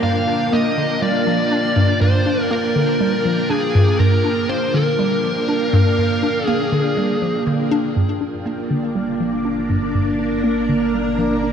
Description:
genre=ambient, sequencer-driven space music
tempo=121 BPM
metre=4/4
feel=straight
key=G minor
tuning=A4 = 440 Hz
part: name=fuzz lead guitar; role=melody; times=0.0-7.4 s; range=Ab4 to F5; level=-22 LUFS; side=left 1 dB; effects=distortion, ping-pong delay
part: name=string machine, full ensemble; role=sustained chords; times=0.0-11.5 s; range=Bb3 to G5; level=-20 LUFS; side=right 1 dB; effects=ensemble chorus
part: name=hollow square pluck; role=riff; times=0.0-11.5 s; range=G2 to D4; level=-20 LUFS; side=equal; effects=chorus, ping-pong delay
part: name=round analog bass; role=bass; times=8.0-11.5 s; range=G1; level=-32 LUFS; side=equal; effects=none
room=wet plate reverb, RT60 3.3 s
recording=dreamy mix soaked in reverb, cassette tape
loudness=-16 LUFS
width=side -8 dB against mid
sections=0.0-8.0 A section; 8.0-11.5 B section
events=filter sweep on synth arpeggio sound 0.0-8.0, 8.0-11.5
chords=0.0 Gm7

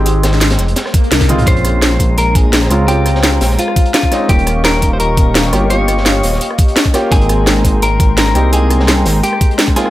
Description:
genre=liquid drum and bass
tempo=170 BPM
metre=4/4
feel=straight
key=Bb dorian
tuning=A4 = 440 Hz
part: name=dark grand piano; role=accompaniment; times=0.0-9.9 s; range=Ab3 to G5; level=-19 LUFS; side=equal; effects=low-pass filter
part: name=dark detuned saw bass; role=bass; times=0.0-9.2 s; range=Eb1 to Db2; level=-14 LUFS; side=equal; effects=none
part: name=crunchy breakbeat drum kit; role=drums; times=0.1-9.9 s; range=hi-hat, snare drum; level=-22 LUFS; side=equal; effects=high-pass filter on hats, high-pass filter on snare, high-pass filter on room
part: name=drum and bass drum kit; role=drums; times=0.1-9.9 s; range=hi-hat, rim click, snare drum, toms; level=-16 LUFS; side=equal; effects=none
part: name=swell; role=sound effects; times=0.9-1.5 s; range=none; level=-23 LUFS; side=left 3 dB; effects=none
part: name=electronic kick drum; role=drums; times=0.9-9.7 s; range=none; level=-12 LUFS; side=equal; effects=none
part: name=clean electric guitar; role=melody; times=1.5-9.9 s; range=F4 to Db5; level=-18 LUFS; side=left 1 dB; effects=dub echo
part: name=warm analog pad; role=sustained chords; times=1.5-9.9 s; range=Ab3 to Db6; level=-22 LUFS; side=left 1 dB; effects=chorus, sidechain pumping
room=light reverb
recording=none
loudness=-10 LUFS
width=side -15 dB against mid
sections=0.0-9.9 A section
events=filter sweep on grand piano 0.0-9.9; swell 0.9-1.5; drum fill 1.2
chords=0.0 Fm9; 1.5 Bbm9; 4.3 Eb9; 7.1 Abmaj9

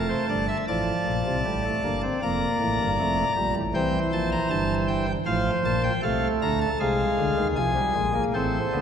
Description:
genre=classical, baroque-style 4-part fugue for pipe organ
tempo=78 BPM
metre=4/4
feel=straight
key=unclear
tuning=A4 = 439 Hz
part: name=pipe organ, cornet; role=solo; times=0.0-8.8 s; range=F1 to Bb5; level=-22 LUFS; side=equal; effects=none
room=wet church reverb, RT60 3.1 s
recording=none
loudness=-22 LUFS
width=side -8 dB against mid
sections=0.7-8.8 A section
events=none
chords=0.0 F; 0.7 Dm/A; 2.2 Gm7/F; 3.8 C7; 5.3 F/A; 6.8 Dm7b5/C

